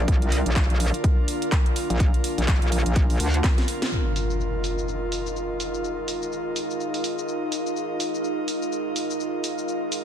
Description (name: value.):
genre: bass house.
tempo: 125 BPM.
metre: 4/4.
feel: swing 58% on 16ths.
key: F dorian.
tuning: A4 = 440 Hz.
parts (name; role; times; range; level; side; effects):
deep dark ambient pad; sustained chords; 0.0-10.0 s; D4 to F5; -30 LUFS; right 1 dB; chorus, built-in reverb, sidechain pumping.
metallic wobble bass; bass; 0.0-3.4 s; Bb1 to D2; -23 LUFS; equal; chorus, tube saturation, sidechain pumping.
airy breathy pad; texture; 0.0-10.0 s; F4 to Eb5; -30 LUFS; equal; chorus, sidechain pumping.
electronic kick drum; drums; 0.1-3.6 s; none; -21 LUFS; equal; overdrive.
house drum kit; drums; 0.1-10.0 s; cabasa, handclaps, hi-hat, snare drum; -31 LUFS; right 1 dB; overdrive, low-pass filter on hats, low-pass filter on snare, low-pass filter on perc, low-pass filter on room.
impact; sound effects; 3.9-5.8 s; none; -29 LUFS; equal; none.
room: light reverb, digital ambience.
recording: dense, heavily limited modern master.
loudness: -22 LUFS.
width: side -9 dB against mid.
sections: 0.0-3.9 A section; 3.9-10.0 B section.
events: drum fill 3.4-3.9; band accent 3.8; impact 3.9-5.8.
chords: 0.0 Bb; 3.9 Fm7.